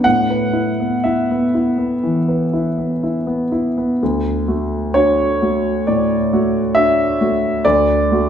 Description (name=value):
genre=neoclassical minimalist piano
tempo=59-68 BPM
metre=4/4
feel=rubato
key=unclear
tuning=A4 = 439 Hz
part: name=warm grand piano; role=solo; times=0.0-8.3 s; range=D2 to F#5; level=-14 LUFS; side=equal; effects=none
room=wet recital hall reverb, RT60 1.5 s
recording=recorded in a church or concert hall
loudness=-15 LUFS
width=side -9 dB against mid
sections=0.0-4.0 A section; 4.0-8.3 B section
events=none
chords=0.0 Asus2; 4.0 D